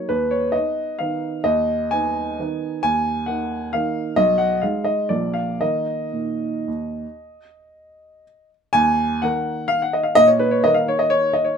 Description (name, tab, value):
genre	classical, piano waltz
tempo	111-139 BPM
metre	3/4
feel	rubato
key	Eb minor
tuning	A4 = 440 Hz
part	warm upright piano	solo	0.0-11.6 s	Bb1 to Ab5	-18 LUFS	equal	none
room	light reverb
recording	none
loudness	-18 LUFS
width	side -7 dB against mid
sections	0.0-8.7 A section; 8.7-11.6 A section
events	none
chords	0.1 Abm/Eb; 2.8 Ebm; 4.2 Abm/Cb; 5.1 Bb; 5.6 Eb5